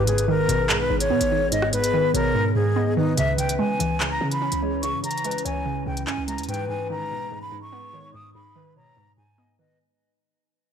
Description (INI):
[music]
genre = hip hop, drill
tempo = 145 BPM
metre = 4/4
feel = half-time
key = G# minor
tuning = A4 = 441 Hz
[part]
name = breathy concert flute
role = melody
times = 0.0-9.8 s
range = D#4 to D#6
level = -26 LUFS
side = left 1 dB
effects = tape echo
[part]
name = hollow clarinet-like synth lead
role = second line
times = 0.0-9.8 s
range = B4 to D#5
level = -30 LUFS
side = left 7 dB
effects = chorus, tape echo
[part]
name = glassy wavetable pluck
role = accompaniment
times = 0.0-9.8 s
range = G#2 to C#4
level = -26 LUFS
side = right 3 dB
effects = chorus, phaser
[part]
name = warbly tape-like pad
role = sustained chords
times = 0.0-9.8 s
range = D#3 to B4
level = -32 LUFS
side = left 1 dB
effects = chorus, built-in reverb
[part]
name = short 808-style bass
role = bass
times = 0.0-6.5 s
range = G#1 to C#3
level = -30 LUFS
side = equal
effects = none
[part]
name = drill drum kit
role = drums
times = 0.1-6.6 s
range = handclaps, hi-hat, rim click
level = -27 LUFS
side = equal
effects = none
[sound]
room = moderate concert hall reverb, RT60 1.9 s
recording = blown-out, overdriven recording, overdrive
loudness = -21 LUFS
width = side -8 dB against mid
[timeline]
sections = 0.0-3.2 A section; 3.2-9.8 B section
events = silent gap 2.3-3.2; fade-out 3.2-9.8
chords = 0.0 G#m; 3.2 C#m7; 6.5 G#m